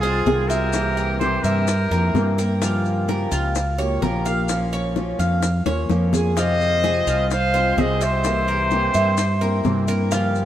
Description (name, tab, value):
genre	latin, Cuban son and guajira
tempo	128 BPM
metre	4/4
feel	straight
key	unclear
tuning	A4 = 440 Hz
part	clear trumpet	melody	0.0-2.4, 6.4-9.9 s	Ab4 to F5	-23 LUFS	left 1 dB	none
part	breathy bright jazz flute	second line	0.0-2.4, 6.4-9.9 s	F4 to C5	-29 LUFS	right 3 dB	none
part	picked acoustic archtop guitar	accompaniment	0.0-10.5 s	C3 to G4	-27 LUFS	left 2 dB	none
part	Cuban tres	arpeggios	0.0-10.5 s	F4 to F5	-26 LUFS	right 2 dB	none
part	mellow fretless electric bass	bass	0.0-10.5 s	Bb1 to G2	-22 LUFS	equal	none
part	bongos	percussion	0.0-10.4 s	none	-28 LUFS	left 3 dB	none
part	maracas	percussion	0.0-10.5 s	none	-35 LUFS	left 6 dB	none
room	wet plate reverb, RT60 3.4 s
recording	heard from further back in the room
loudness	-18 LUFS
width	side -11 dB against mid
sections	0.0-10.5 A section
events	drum fill 5.7-6.4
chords	0.0 Fm7; 0.7 C7; 2.6 Gm7b5; 4.5 Bbm; 6.4 Fm7; 8.2 C7